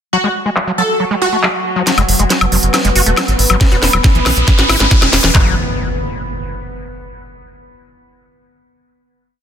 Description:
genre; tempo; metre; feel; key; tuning
psychedelic trance; 138 BPM; 4/4; straight; unclear; A4 = 440 Hz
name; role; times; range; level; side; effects
supersaw stab; melody; 0.1-1.5 s; F#4 to A4; -18 LUFS; equal; phaser, sidechain pumping, dub echo
overtone-sweeping drone; sustained chords; 0.5-5.4 s; F#3 to B4; -22 LUFS; left 1 dB; chorus, built-in reverb, sidechain pumping
screaming distorted acid line; riff; 0.1-5.5 s; E3 to F#4; -19 LUFS; moving between left 5 dB and right 3 dB; distortion, chorus, auto-pan, sidechain pumping, dub echo
drum and bass drum kit; drums; 0.6-5.3 s; handclaps, hi-hat, snare drum, woodblock; -15 LUFS; left 1 dB; low-pass filter on snare, low-pass filter on hats, low-pass filter on perc, low-pass filter on room
riser and impact; sound effects; 3.4-7.1 s; none; -20 LUFS; equal; none
tight sequencer bass; bass; 2.0-5.5 s; E1 to B1; -16 LUFS; equal; tube saturation
drum and bass drum kit; drums; 3.6-5.4 s; handclaps, kick drum; -11 LUFS; equal; none
room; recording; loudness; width
light reverb, digital ambience; dense, heavily limited modern master; -11 LUFS; side -8 dB against mid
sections
0.1-1.9 intro; 1.9-5.3 build; 5.3-7.1 final chord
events
build-up 1.9-5.3; drum fill 1.9-5.3; filter sweep on acid bass 1.9-5.3; riser 3.4-5.3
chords
0.1 N.C.; 1.9 Eadd9 (rootless); 3.6 E5; 5.3 N.C.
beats
| 0.13 0.56 1.00 1.43 | 1.87 2.30 2.74 3.17 | 3.61 4.04 4.48 4.91 | 5.35 5.78 6.22 6.65

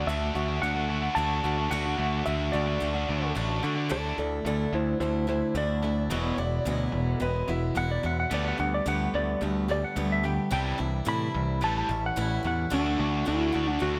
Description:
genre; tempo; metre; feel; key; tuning
folk rock and heartland rock; 109 BPM; 4/4; straight; D major, D mixolydian from 3.9 s; A4 = 440 Hz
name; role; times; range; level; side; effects
clean lap steel guitar; melody; 0.0-14.0 s; D4 to B5; -33 LUFS; equal; none
picked swing-style acoustic guitar; accompaniment; 0.0-14.0 s; E2 to G4; -37 LUFS; equal; none
biting overdriven guitar; riff; 0.0-14.0 s; E2 to F#4; -34 LUFS; equal; none
modern bright picked electric bass; bass; 0.0-14.0 s; E1 to D3; -32 LUFS; equal; none
clear upright piano; second line; 6.3-7.8 s; E4 to D5; -37 LUFS; equal; none
room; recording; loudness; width
light reverb; none; -28 LUFS; mono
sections
0.0-3.9 A section; 3.9-12.7 B section; 12.7-14.0 A section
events
electric slide guitar solo 3.9-12.7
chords
0.0 D; 3.9 Dsus2; 6.1 Eadd9; 8.3 Gadd9/D; 10.5 Cadd9; 11.6 A7; 12.7 D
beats
0.08 0.63 1.17 | 1.72 2.27 2.81 3.36 | 3.91 4.46 5.01 5.56 | 6.11 6.66 7.21 7.76 | 8.31 8.86 9.41 9.96 | 10.52 11.07 11.62 12.17 | 12.72 13.27 13.81

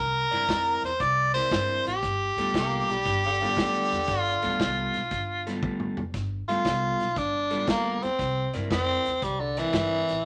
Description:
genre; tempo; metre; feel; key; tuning
electric blues shuffle; 117 BPM; 4/4; swing 68% on 8ths; unclear; A4 = 440 Hz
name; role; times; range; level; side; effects
clear harmonica; melody; 0.0-5.6 s; G4 to D5; -27 LUFS; equal; overdrive
upright bass; bass; 0.0-10.2 s; G1 to G2; -36 LUFS; equal; none
electric guitar at the edge of break-up; riff; 0.3-10.1 s; G3 to D5; -36 LUFS; equal; none
vintage drum kit; drums; 0.3-10.2 s; hi-hat, kick drum, snare drum, toms; -34 LUFS; equal; none
growling tenor saxophone; second line; 2.6-10.2 s; D3 to F4; -30 LUFS; equal; none
room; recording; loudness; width
moderate studio reverb, RT60 0.8 s; none; -26 LUFS; mono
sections
0.0-6.1 A section; 6.1-10.2 B section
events
drum fill 5.6-6.1; tenor saxophone solo 6.1-10.2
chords
0.0 C9; 2.0 G9; 8.2 C9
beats
0.50 1.01 1.53 | 2.04 2.55 3.07 3.58 | 4.09 4.61 5.12 5.63 | 6.15 6.66 7.17 7.69 | 8.20 8.71 9.23 9.74

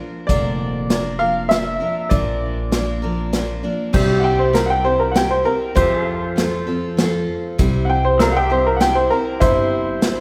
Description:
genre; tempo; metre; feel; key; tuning
honky-tonk and classic country; 99 BPM; 3/4; straight; C mixolydian; A4 = 436 Hz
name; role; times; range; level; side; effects
picked steel-string acoustic guitar; accompaniment; 0.0-10.2 s; Bb2 to C5; -26 LUFS; equal; none
bright upright piano; melody; 0.3-10.2 s; E4 to G5; -21 LUFS; equal; none
upright bass; bass; 0.3-10.2 s; F1 to F2; -26 LUFS; equal; none
natural country drum kit; drums; 0.3-10.2 s; crash cymbal, hi-hat, kick drum, snare drum; -23 LUFS; equal; none
pedal steel guitar; sustained chords; 3.9-10.2 s; G4 to F5; -30 LUFS; equal; none
room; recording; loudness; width
moderate concert hall reverb, RT60 2.2 s; recorded in a church or concert hall; -18 LUFS; mono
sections
0.0-3.9 A section; 3.9-10.2 B section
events
upright piano solo 3.9-10.2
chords
0.0 Bb; 3.9 C; 5.8 F; 7.6 C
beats
| 0.29 0.90 1.50 | 2.11 2.72 3.33 | 3.94 4.55 5.16 | 5.76 6.37 6.98 | 7.59 8.20 8.80 | 9.41 10.02

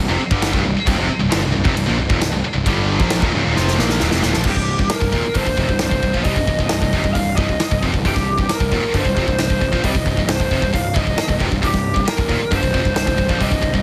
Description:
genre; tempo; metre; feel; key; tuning
hard rock; 134 BPM; 4/4; straight; C minor; A4 = 440 Hz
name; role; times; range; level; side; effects
distorted electric guitar; riff; 0.0-13.8 s; C2 to Bb3; -26 LUFS; equal; overdrive
heavy high-gain guitar; riff; 0.0-13.8 s; C2 to Bb3; -26 LUFS; equal; distortion
high-gain distorted guitar; riff; 0.0-4.5 s; C2 to Bb3; -28 LUFS; equal; none
fuzz picked electric bass; bass; 0.0-13.8 s; C1 to C2; -25 LUFS; equal; overdrive
big rock drum kit; drums; 0.3-13.8 s; crash cymbal, hi-hat, kick drum, snare drum; -23 LUFS; equal; none
lead guitar through a small cranked amp; melody; 4.5-13.8 s; G4 to F5; -25 LUFS; equal; overdrive, digital delay
room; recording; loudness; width
light reverb; heavily compressed radio sound; -18 LUFS; mono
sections
0.0-4.5 A section; 4.5-13.8 B section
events
drum fill 3.6-4.5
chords
0.0 Cm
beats
0.42 | 0.87 1.32 1.77 2.22 | 2.67 3.11 3.56 4.01 | 4.46 4.91 5.36 5.81 | 6.25 6.70 7.15 7.60 | 8.05 8.50 8.94 9.39 | 9.84 10.29 10.73 11.18 | 11.62 12.07 12.52 12.96 | 13.41

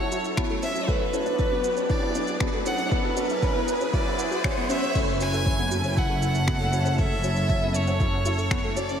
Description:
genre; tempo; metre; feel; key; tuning
piano and strings electronica; 118 BPM; 4/4; straight; F# minor; A4 = 440 Hz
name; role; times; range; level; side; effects
warm violin; melody; 0.0-9.0 s; B4 to G#5; -28 LUFS; equal; ping-pong delay
lush unison pad; sustained chords; 0.0-9.0 s; F#3 to B4; -32 LUFS; equal; chorus
soft round pluck; arpeggios; 0.0-8.8 s; C#4 to F#5; -35 LUFS; equal; chorus, sidechain pumping, ping-pong delay
warm upright piano; riff; 0.0-9.0 s; A3 to F#4; -31 LUFS; left 1 dB; ensemble chorus, ping-pong delay
riser; sound effects; 0.0-5.0 s; none; -34 LUFS; equal; none
deep house drum kit; drums; 0.1-9.0 s; crash cymbal, finger snaps, shaker; -35 LUFS; equal; overdrive, high-pass filter on perc, high-pass filter on snare, high-pass filter on cymbals, high-pass filter on room
electronic kick drum; drums; 0.4-8.6 s; none; -27 LUFS; equal; overdrive
muted chamber double bass section; bass; 5.0-9.0 s; F#1; -26 LUFS; equal; sidechain pumping
room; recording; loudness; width
wet lush hall reverb, RT60 2.2 s; dreamy mix soaked in reverb; -22 LUFS; side -8 dB against mid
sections
0.0-5.0 A section; 5.0-9.0 B section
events
build-up 0.0-5.0; riser 0.0-5.0; filter sweep on analog synth pad 0.0-5.0; filter sweep on synth arpeggio sound 0.0-5.0; drop 5.0-9.0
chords
0.0 F#m7; 0.9 Bm7/F#; 2.9 Eadd9/F#; 5.0 F#m7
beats
0.38 | 0.88 1.39 1.90 2.41 | 2.92 3.43 3.94 4.44 | 4.95 5.46 5.97 6.48 | 6.99 7.50 8.00 8.51

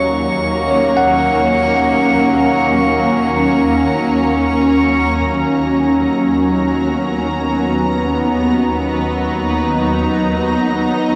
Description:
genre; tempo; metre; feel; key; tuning
ambient; free time; none; none; unclear; A4 = 440 Hz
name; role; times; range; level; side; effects
shimmering ambient pad; sustained chords; 0.0-11.2 s; D#2 to A#5; -16 LUFS; equal; chorus, built-in reverb, shimmer reverb
bell-like tine electric piano; arpeggios; 0.0-5.2 s; Db5 to Gb5; -22 LUFS; equal; delay, shimmer reverb
drifting glass-harmonics texture; texture; 0.0-11.2 s; Db6; -26 LUFS; equal; chorus, built-in reverb, shimmer reverb
room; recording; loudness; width
wet huge ambient reverb, RT60 7.2 s; none; -15 LUFS; mono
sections
0.0-5.2 A section; 5.2-11.2 B section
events
none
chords
0.0 Gb/Eb; 5.2 Bmaj7/D#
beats
free time

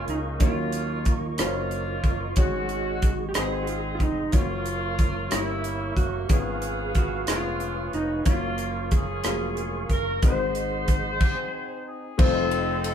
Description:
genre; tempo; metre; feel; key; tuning
slow gospel; 61 BPM (dotted quarters); 6/8; straight; unclear; A4 = 437 Hz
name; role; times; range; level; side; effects
electric slide guitar; melody; 0.0-11.8 s; Eb4 to C5; -33 LUFS; right 4 dB; none
warm horn section; melody; 0.0-12.9 s; Ab3 to F5; -32 LUFS; equal; none
clear grand piano; accompaniment; 0.0-12.9 s; Ab2 to Eb5; -31 LUFS; left 4 dB; none
mellow tonewheel organ; sustained chords; 0.0-12.9 s; Ab4 to Db6; -36 LUFS; right 2 dB; fast rotary speaker, chorus vibrato
modern bright fingered electric bass; bass; 0.0-12.9 s; F1 to Eb2; -33 LUFS; equal; none
crisp fusion drum kit; drums; 0.1-12.9 s; crash cymbal, hi-hat, kick drum, ride cymbal, rim click; -24 LUFS; equal; none
room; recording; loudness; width
moderate studio reverb, RT60 0.6 s; band playing live in one room; -23 LUFS; side -8 dB against mid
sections
0.0-12.2 A section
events
stop 11.2-12.2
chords
0.4 Ebm7; 2.4 Ab7sus4; 3.4 Ab7; 4.3 Gbmaj7; 5.3 Gdim7; 6.3 Db7/Ab; 8.3 Gbmaj7; 10.2 Ab7; 12.2 F7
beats
| 0.41 1.39 | 2.37 3.36 | 4.34 5.32 | 6.30 7.28 | 8.27 9.25 | 10.23 11.21 | 12.19

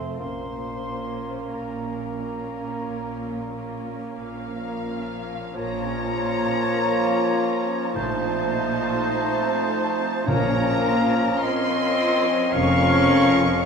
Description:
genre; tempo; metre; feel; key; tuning
classical, slow romantic movement for symphony orchestra; 41-54 BPM; 4/4; rubato; Bb minor; A4 = 440 Hz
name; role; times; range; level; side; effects
muted symphonic violin section; melody; 0.0-13.7 s; F4 to Db6; -29 LUFS; left 1 dB; none
concert flute; second line; 0.0-13.7 s; Bb4 to C6; -29 LUFS; left 1 dB; none
muted symphonic violin section; second line; 0.0-13.7 s; A3 to C5; -33 LUFS; left 1 dB; none
warm clarinet; second line; 0.0-13.6 s; C4 to F4; -31 LUFS; left 2 dB; none
mellow bassoon; accompaniment; 0.0-13.7 s; F3 to Bb3; -31 LUFS; right 4 dB; none
muted symphonic viola section; accompaniment; 0.0-13.7 s; F3 to Eb4; -33 LUFS; right 2 dB; none
muted studio double bass section; bass; 0.0-13.5 s; F1 to Bb1; -33 LUFS; right 3 dB; none
muted symphonic cello section; bass; 0.0-13.5 s; F2 to Bb2; -30 LUFS; right 1 dB; none
mellow French horn section; sustained chords; 4.2-13.5 s; F3 to Db4; -26 LUFS; left 2 dB; none
warm oboe; second line; 5.6-13.7 s; Bb4 to Db5; -32 LUFS; equal; none
timpani; percussion; 8.0-11.9 s; Bb2; -31 LUFS; left 1 dB; none
room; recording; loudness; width
wet recital hall reverb, RT60 1.7 s; minimal, uncompressed stereo recording; -21 LUFS; side -6 dB against mid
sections
0.0-5.5 A section; 5.5-13.7 B section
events
none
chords
0.2 Bbm; 8.0 F7/Bb; 10.3 Bbm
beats
| 0.20 1.54 2.85 4.16 | 5.55 6.77 7.96 9.12 | 10.27 11.42 12.54

